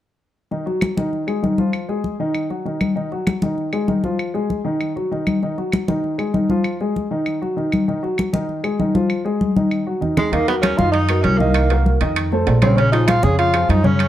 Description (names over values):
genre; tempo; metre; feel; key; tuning
Afro-Cuban jazz; 196 BPM; 4/4; straight; Eb minor; A4 = 440 Hz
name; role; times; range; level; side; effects
warm baby grand piano; accompaniment; 0.5-14.1 s; Db3 to Eb5; -21 LUFS; left 1 dB; none
congas; percussion; 0.5-14.1 s; none; -21 LUFS; left 2 dB; none
claves; percussion; 0.8-14.1 s; none; -30 LUFS; left 1 dB; none
warm tenor saxophone; melody; 10.2-14.1 s; Ab3 to Ab4; -19 LUFS; right 1 dB; none
upright bass; bass; 10.3-14.1 s; Bb1 to Gb2; -18 LUFS; right 1 dB; none
timbales; percussion; 10.3-14.1 s; none; -26 LUFS; right 7 dB; none
room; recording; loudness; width
moderate studio reverb, RT60 0.8 s; dark, warm production; -17 LUFS; side -12 dB against mid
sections
0.5-10.3 A section; 10.3-14.1 B section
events
drum fill 9.4-10.3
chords
0.5 Ebm; 1.1 Ebsus24; 2.4 Ebm; 3.6 Ebsus24; 4.8 Ebm; 6.0 Ebsus24; 7.3 Ebm; 8.5 Ebsus24; 9.7 Ebmadd11; 10.3 Ebm; 11.6 Cm7b5; 12.2 F7b13; 12.8 Bbm7